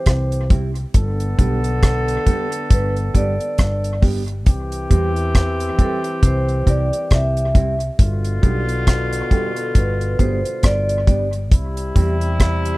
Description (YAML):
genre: roots reggae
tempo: 68 BPM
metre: 4/4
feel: swing 58% on 16ths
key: C major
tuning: A4 = 440 Hz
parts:
  - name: vibraphone with medium hard mallets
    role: melody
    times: 0.0-11.3 s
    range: A4 to E5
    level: -25 LUFS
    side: equal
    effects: tape echo, plate reverb
  - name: mellow horn section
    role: second line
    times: 0.0-12.8 s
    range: B2 to A4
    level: -24 LUFS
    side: left 1 dB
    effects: tape echo, plate reverb
  - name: hollow-body short-scale fingered electric bass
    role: bass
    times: 0.1-12.7 s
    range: G1 to E2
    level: -21 LUFS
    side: equal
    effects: none
  - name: deep reggae drum kit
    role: drums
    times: 0.1-12.8 s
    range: hi-hat, kick drum, rim click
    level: -15 LUFS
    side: equal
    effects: none
  - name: mellow electric guitar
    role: accompaniment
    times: 0.5-12.2 s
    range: G3 to G4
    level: -27 LUFS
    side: right 4 dB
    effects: tape echo, plate reverb
room: light reverb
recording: rough home demo mix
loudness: -16 LUFS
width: side -20 dB against mid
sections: 0.0-12.8 A section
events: none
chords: 0.0 C; 0.9 G; 4.5 C; 8.0 G; 11.5 C